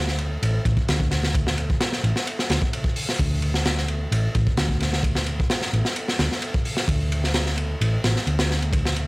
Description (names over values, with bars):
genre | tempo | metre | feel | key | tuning
breakbeat, breaks | 130 BPM | 4/4 | straight | unclear | A4 = 440 Hz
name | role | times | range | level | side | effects
hollow-body short-scale picked electric bass | bass | 0.0-9.1 s | A1 to D2 | -23 LUFS | equal | none
crunchy breakbeat drum kit | drums | 0.1-9.1 s | hi-hat, kick drum, ride cymbal, snare drum | -23 LUFS | equal | none
room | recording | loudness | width
little or no reverb | vinyl crackle | -20 LUFS | side -24 dB against mid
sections
0.0-9.1 A section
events
none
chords
none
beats
0.42 0.88 | 1.35 1.81 2.27 2.73 | 3.19 3.65 4.12 4.58 | 5.04 5.50 5.96 6.42 | 6.88 7.35 7.81 8.27 | 8.73